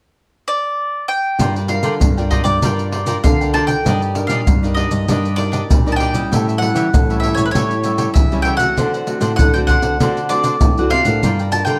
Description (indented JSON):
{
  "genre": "samba and choro",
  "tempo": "98 BPM",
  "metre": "4/4",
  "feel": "straight",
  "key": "G minor",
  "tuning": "A4 = 439 Hz",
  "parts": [
    { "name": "bowl-back mandolin", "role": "melody", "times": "0.5-11.8 s", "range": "B4 to A5", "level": "-22 LUFS", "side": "equal", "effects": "none" },
    { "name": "cavaquinho", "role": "accompaniment", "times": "1.4-11.8 s", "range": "D4 to G5", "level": "-29 LUFS", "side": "equal", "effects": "none" },
    { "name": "nylon-string guitar", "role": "accompaniment", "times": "1.4-11.8 s", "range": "A2 to Bb4", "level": "-26 LUFS", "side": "equal", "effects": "none" },
    { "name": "nylon-string guitar", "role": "bass", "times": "1.4-11.8 s", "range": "G2 to E3", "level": "-22 LUFS", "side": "equal", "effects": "none" },
    { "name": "maracas, surdo and pandeiro", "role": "percussion", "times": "1.4-11.8 s", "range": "none", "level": "-20 LUFS", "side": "equal", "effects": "none" }
  ],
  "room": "light reverb",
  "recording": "none",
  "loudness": "-16 LUFS",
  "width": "mono",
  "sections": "0.0-1.4 A section; 1.4-11.8 B section",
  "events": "none",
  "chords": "0.0 N.C.; 1.4 Gm7; 3.9 Ebmaj7/G; 6.3 A7; 8.8 D7; 11.2 Gm7",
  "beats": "0.17 0.79 | 1.40 2.01 2.63 3.24 | 3.85 4.47 5.08 5.70 | 6.31 6.93 7.54 8.16 | 8.77 9.38 10.00 10.62 | 11.23"
}